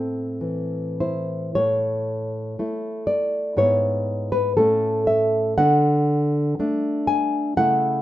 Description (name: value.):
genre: romantic piece for solo classical guitar.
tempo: 60 BPM.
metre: 2/4.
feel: rubato.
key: A major.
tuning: A4 = 440 Hz.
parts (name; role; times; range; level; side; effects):
nylon-string guitar; solo; 0.0-8.0 s; G#2 to G#5; -19 LUFS; equal; none.
room: wet studio reverb, RT60 0.7 s.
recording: rough home demo mix.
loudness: -19 LUFS.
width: side -14 dB against mid.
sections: 0.0-1.6 A section; 1.6-8.0 B section.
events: none.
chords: 0.0 Am; 1.6 A; 3.6 E/G#; 4.6 A; 5.6 D.